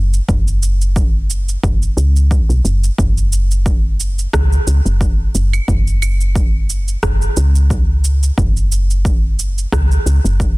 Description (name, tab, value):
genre	organic downtempo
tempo	89 BPM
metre	4/4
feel	swing 55% on 16ths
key	unclear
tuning	A4 = 440 Hz
part	woody FM bass	bass	0.0-10.6 s	F#1 to C#2	-14 LUFS	equal	sidechain pumping
part	electronic cabasa, rim click and claves	drums	0.1-10.6 s	none	-24 LUFS	right 3 dB	overdrive
part	electronic kick drum	drums	0.3-10.5 s	none	-17 LUFS	equal	overdrive
room	little or no reverb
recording	dense, heavily limited modern master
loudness	-12 LUFS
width	side -23 dB against mid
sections	0.0-10.6 A section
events	none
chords	none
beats	| 0.29 0.96 1.64 2.31 | 2.99 3.66 4.33 5.01 | 5.68 6.36 7.03 7.71 | 8.38 9.05 9.73 10.40